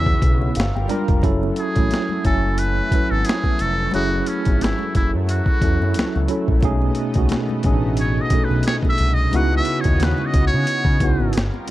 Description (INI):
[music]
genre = R&B, neo-soul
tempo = 89 BPM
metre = 4/4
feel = swing 56% on 16ths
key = F# dorian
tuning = A4 = 440 Hz
[part]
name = trumpet with metal mute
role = melody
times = 0.0-11.4 s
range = C#4 to F#5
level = -24 LUFS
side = equal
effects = tape echo
[part]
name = tine electric piano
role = accompaniment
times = 0.0-11.4 s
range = B2 to Bb5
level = -23 LUFS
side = right 2 dB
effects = fast stereo tremolo
[part]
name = lush unison pad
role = sustained chords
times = 0.0-11.7 s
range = C#3 to D#5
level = -31 LUFS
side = equal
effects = chorus
[part]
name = smooth gliding synth bass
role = bass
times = 0.0-11.5 s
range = F1 to C#3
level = -21 LUFS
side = equal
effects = none
[part]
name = boom bap sampler-style drum kit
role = drums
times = 0.1-11.7 s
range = hi-hat, kick drum, snare drum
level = -20 LUFS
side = equal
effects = none
[part]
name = congas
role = percussion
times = 0.4-11.7 s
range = none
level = -34 LUFS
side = left 6 dB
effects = none
[sound]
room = light reverb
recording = dark, warm production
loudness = -17 LUFS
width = side -15 dB against mid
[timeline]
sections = 0.0-1.2 A section; 1.2-11.7 B section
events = tine electric piano fill 0.2-1.2; muted trumpet solo 1.2-11.7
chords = 0.0 C#m11; 0.6 Gm7; 1.2 F#m7; 6.6 B13; 9.3 C#m11